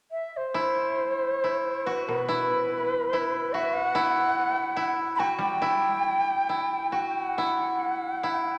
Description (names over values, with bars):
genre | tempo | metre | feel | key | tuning
japanese traditional, Japanese chamber music | 70 BPM | 2/4 | uneven beats, rubato | E hirajoshi | A4 = 443 Hz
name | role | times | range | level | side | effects
breathy bright shakuhachi | melody | 0.1-8.6 s | B4 to B5 | -29 LUFS | equal | none
koto | second line | 0.5-8.6 s | E4 to F#4 | -31 LUFS | equal | none
koto | accompaniment | 2.1-8.0 s | B2 to G3 | -42 LUFS | equal | none
room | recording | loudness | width
wet church reverb, RT60 4.0 s | none | -27 LUFS | mono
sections
0.5-8.6 A section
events
none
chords
none